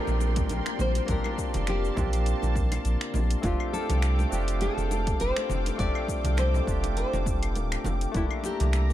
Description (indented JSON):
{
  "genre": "sunset chillout",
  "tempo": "102 BPM",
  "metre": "4/4",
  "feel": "swing 56% on 16ths",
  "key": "Bb lydian",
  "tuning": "A4 = 440 Hz",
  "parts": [
    { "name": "nylon-string guitar", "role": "melody", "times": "0.0-8.9 s", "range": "E4 to D5", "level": "-33 LUFS", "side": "left 1 dB", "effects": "ping-pong delay" },
    { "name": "barky tine electric piano", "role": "accompaniment", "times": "0.0-8.9 s", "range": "A3 to G4", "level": "-33 LUFS", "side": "moving between left 7 dB and right 6 dB", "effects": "auto-pan, ping-pong delay" },
    { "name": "lush unison pad", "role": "sustained chords", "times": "0.0-8.9 s", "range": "A4 to D6", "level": "-36 LUFS", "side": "left 1 dB", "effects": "chorus, phaser" },
    { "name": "downlifter", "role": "sound effects", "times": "0.0-3.4 s", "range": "none", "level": "-40 LUFS", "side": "equal", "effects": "none" },
    { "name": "warm sub bass", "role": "bass", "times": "0.1-8.9 s", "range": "D1 to C2", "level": "-26 LUFS", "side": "equal", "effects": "none" },
    { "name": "deep house drum kit", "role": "drums", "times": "0.1-8.9 s", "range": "cabasa, claves, finger snaps, hi-hat", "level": "-37 LUFS", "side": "left 1 dB", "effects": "overdrive" },
    { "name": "congas and bongos", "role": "percussion", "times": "0.1-8.9 s", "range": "none", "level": "-37 LUFS", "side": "right 2 dB", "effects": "none" },
    { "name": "electronic kick drum", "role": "drums", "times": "0.4-8.3 s", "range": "none", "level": "-31 LUFS", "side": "equal", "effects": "overdrive" },
    { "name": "wind-like tuned noise texture", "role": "texture", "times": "8.4-8.9 s", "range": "Bb5 to Bb6", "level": "-46 LUFS", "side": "left 1 dB", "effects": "built-in reverb" }
  ],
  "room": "little or no reverb",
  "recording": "dark, warm production",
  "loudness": "-24 LUFS",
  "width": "side -13 dB against mid",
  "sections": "0.0-8.9 A section",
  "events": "none",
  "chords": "0.0 Bb69; 3.4 F69; 8.1 C13/E"
}